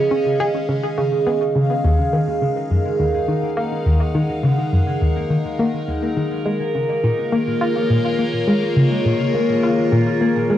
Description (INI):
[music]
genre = ambient, sequencer-driven space music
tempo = 104 BPM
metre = 4/4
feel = straight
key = unclear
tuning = A4 = 440 Hz
[part]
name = evolving wavetable pad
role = sustained chords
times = 0.0-10.6 s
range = A#3 to F#5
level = -20 LUFS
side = equal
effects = phaser, built-in reverb, cassette tape
[part]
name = concert harp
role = arpeggios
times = 0.0-10.6 s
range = D#3 to G#4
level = -27 LUFS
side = equal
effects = auto-pan, cassette tape, tape echo
[part]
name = analog pluck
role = riff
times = 0.1-10.6 s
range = D#2 to G#4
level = -19 LUFS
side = left 1 dB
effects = chorus, cassette tape, tape echo
[sound]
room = wet booth ambience, RT60 0.2 s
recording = home recording on cassette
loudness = -16 LUFS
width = side -12 dB against mid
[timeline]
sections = 0.0-10.6 A section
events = fade-in on harp 0.0-10.6; filter sweep on synth arpeggio sound 0.0-10.6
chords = 0.0 C#add9; 1.8 D#m7; 6.5 A#m7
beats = 0.11 0.69 1.27 | 1.84 2.42 3.00 3.57 | 4.15 4.73 5.30 5.88 | 6.46 7.04 7.61 8.19 | 8.77 9.34 9.92 10.50